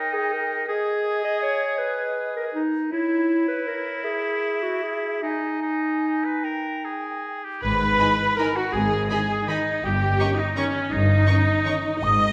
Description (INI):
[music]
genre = classical, orchestral ballroom waltz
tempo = 142-180 BPM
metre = 3/4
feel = rubato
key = G# minor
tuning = A4 = 440 Hz
[part]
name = clear oboe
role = second line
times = 0.0-12.3 s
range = C#4 to D#5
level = -30 LUFS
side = equal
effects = none
[part]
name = mellow clarinet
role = second line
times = 0.0-7.5 s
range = D#4 to D#5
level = -27 LUFS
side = equal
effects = none
[part]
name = mellow hollow concert flute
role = second line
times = 0.0-12.3 s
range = C#5 to D#6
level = -32 LUFS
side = equal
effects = none
[part]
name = rich chamber viola section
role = accompaniment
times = 7.6-12.3 s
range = C#4 to D#5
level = -28 LUFS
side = equal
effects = none
[part]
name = rich chamber double bass section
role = bass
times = 7.6-12.3 s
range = G1 to G#1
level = -28 LUFS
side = equal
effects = none
[part]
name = warm chamber cello section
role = bass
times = 7.6-12.3 s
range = G2 to G#2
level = -30 LUFS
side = equal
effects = none
[part]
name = rich chamber violin section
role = melody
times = 8.0-11.7 s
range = B5 to C#6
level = -39 LUFS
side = equal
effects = none
[part]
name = rich studio violin section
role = second line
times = 8.0-11.7 s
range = D#5 to A#5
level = -40 LUFS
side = equal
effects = none
[part]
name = dark French horn section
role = sustained chords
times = 8.0-11.8 s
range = D#3 to D#4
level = -35 LUFS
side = equal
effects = none
[sound]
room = wet scoring stage reverb, RT60 1.9 s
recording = none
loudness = -23 LUFS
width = mono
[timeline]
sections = 0.0-7.6 A section; 7.6-12.3 B section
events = none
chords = 0.0 D#; 0.7 G#m; 2.9 C#m/E; 4.0 N.C.; 5.2 G#5/D#; 6.4 D#; 7.6 G#m; 9.8 D#7/G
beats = 0.32 | 0.68 1.05 1.43 | 1.79 2.16 2.55 | 2.92 3.29 3.68 | 4.05 4.42 4.83 | 5.22 5.62 6.04 | 6.44 6.84 7.25 | 7.63 8.01 8.38 | 8.74 9.10 9.48 | 9.84 10.20 10.57 | 10.91 11.27 11.65 | 12.02